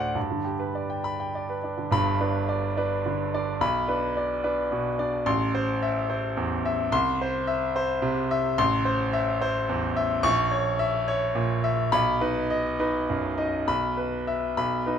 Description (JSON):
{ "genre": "classical, virtuoso piano study", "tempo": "66-73 BPM (dotted quarters)", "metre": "6/8", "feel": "rubato", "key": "G major", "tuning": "A4 = 440 Hz", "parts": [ { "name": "bright grand piano", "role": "solo", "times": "0.0-15.0 s", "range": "G1 to C#6", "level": "-23 LUFS", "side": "equal", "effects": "none" } ], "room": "moderate concert hall reverb, RT60 1.9 s", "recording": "close, detailed microphones", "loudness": "-23 LUFS", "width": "side -8 dB against mid", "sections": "0.0-1.9 A section; 1.9-15.0 B section", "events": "none", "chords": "0.2 G; 3.6 Bm; 5.3 Am; 6.9 C; 8.6 Am; 10.3 A#dim; 11.9 B; 13.7 E5/B" }